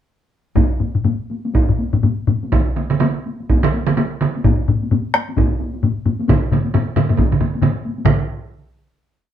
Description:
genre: japanese traditional, taiko drum ensemble.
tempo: 121-146 BPM.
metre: 4/4.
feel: swing 60% on 16ths.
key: none.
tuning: none.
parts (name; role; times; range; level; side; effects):
solo taiko drums; percussion; 0.6-8.5 s; none; -18 LUFS; left 4 dB; none.
solo taiko drums; percussion; 0.6-8.3 s; none; -18 LUFS; right 1 dB; none.
taiko ensemble; percussion; 0.6-8.3 s; none; -24 LUFS; left 3 dB; none.
taiko ensemble; percussion; 2.5-8.5 s; none; -19 LUFS; right 5 dB; none.
room: wet studio reverb, RT60 0.5 s.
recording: band playing live in one room.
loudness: -16 LUFS.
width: side -10 dB against mid.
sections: 0.6-8.1 A section; 8.1-9.3 final hit.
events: speeding up 0.6-9.3.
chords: none.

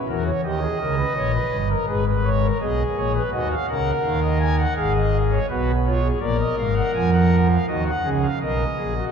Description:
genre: classical, baroque-style 3-part fugue for pipe organ.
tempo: 83 BPM.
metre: 4/4.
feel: straight.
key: unclear.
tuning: A4 = 440 Hz.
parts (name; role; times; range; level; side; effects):
pipe organ, foundations; solo; 0.1-9.1 s; G1 to G#5; -19 LUFS; equal; none.
room: wet church reverb, RT60 3.3 s.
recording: dark, warm production.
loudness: -19 LUFS.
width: side -7 dB against mid.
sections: 0.0-9.1 A section.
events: none.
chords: 0.4 D#7; 1.9 G#m; 3.3 D#m; 4.8 Fdim/Ab; 6.2 A#7; 7.7 D#m.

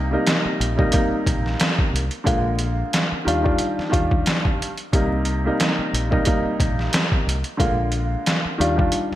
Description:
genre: hip hop, boom-bap hip-hop.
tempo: 90 BPM.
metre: 4/4.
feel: swing 55% on 16ths.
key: C minor.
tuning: A4 = 439 Hz.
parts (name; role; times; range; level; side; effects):
dark upright piano; accompaniment; 0.0-9.2 s; C3 to F4; -23 LUFS; equal; cassette tape, high-pass filter, low-pass filter.
deep dub fingered electric bass; bass; 0.0-9.1 s; Bb1 to Eb2; -24 LUFS; equal; none.
trip hop sampler-style drum kit; drums; 0.3-9.2 s; hi-hat, kick drum, snare drum; -21 LUFS; equal; overdrive, gated reverb.
room: moderate plate reverb, RT60 1.9 s.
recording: bright 1980s-style digital production, vinyl crackle.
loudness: -18 LUFS.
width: side -13 dB against mid.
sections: 0.0-9.2 A section.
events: none.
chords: 0.0 Cm7; 2.3 Bb7; 3.3 Ebmaj9; 4.9 Cm7; 7.6 Bb7; 8.6 Ebmaj9.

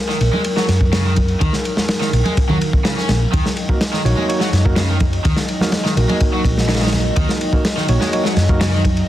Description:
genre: breakbeat, breaks.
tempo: 125 BPM.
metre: 4/4.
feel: straight.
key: Eb minor pentatonic.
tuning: A4 = 440 Hz.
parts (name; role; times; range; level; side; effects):
dark analog pad; sustained chords; 0.0-9.1 s; Gb3 to Eb5; -24 LUFS; equal; chorus, vintage 12-bit sampler grit, sidechain pumping.
raw garage guitar; riff; 0.1-8.8 s; Db3 to Db4; -24 LUFS; equal; overdrive, low-pass filter, tape echo.
crunchy breakbeat drum kit; drums; 0.1-9.1 s; kick drum, ride cymbal, snare drum; -18 LUFS; equal; none.
hollow-body short-scale fingered electric bass; bass; 0.2-9.0 s; Bb1 to Gb2; -17 LUFS; equal; none.
congas; percussion; 0.3-9.0 s; none; -25 LUFS; right 1 dB; none.
overdriven tine electric piano; stabs; 3.7-8.6 s; Bb3 to Db5; -24 LUFS; right 3 dB; tape echo.
room: light reverb, small room ambience.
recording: dense, heavily limited modern master, vinyl crackle.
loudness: -14 LUFS.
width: side -13 dB against mid.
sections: 0.0-9.1 A section.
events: none.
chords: 0.0 Ebm.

